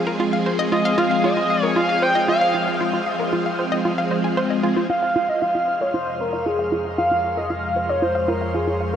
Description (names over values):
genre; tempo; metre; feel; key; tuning
ambient, sequencer-driven space music; 115 BPM; 4/4; straight; F minor; A4 = 440 Hz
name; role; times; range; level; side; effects
phased string machine; sustained chords; 0.0-9.0 s; C3 to C5; -24 LUFS; equal; ensemble chorus, phaser
hollow square pluck; riff; 0.0-9.0 s; F4 to Ab5; -24 LUFS; right 1 dB; chorus, tape echo
pulse-width lead; melody; 0.7-8.9 s; Ab4 to G5; -21 LUFS; equal; chorus, vintage 12-bit sampler grit, tape echo
analog drone; bass; 6.2-9.0 s; F2; -31 LUFS; equal; chorus
bubbling stepped-filter texture; texture; 4.9-9.0 s; C6; -39 LUFS; right 1 dB; chorus, built-in reverb
room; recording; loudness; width
wet shimmer reverb, RT60 8.5 s; none; -18 LUFS; side -9 dB against mid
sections
0.0-4.9 A section; 4.9-9.0 B section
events
fade-in on string machine 4.9-9.0; fade-in on synth drone 4.9-9.0; fade-in on synth texture 4.9-9.0; filter sweep on synth arpeggio sound 4.9-9.0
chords
0.0 Fm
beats
0.20 | 0.72 1.24 1.76 2.29 | 2.81 3.33 3.85 4.37 | 4.89 5.42 5.94 6.46 | 6.98 7.50 8.03 8.55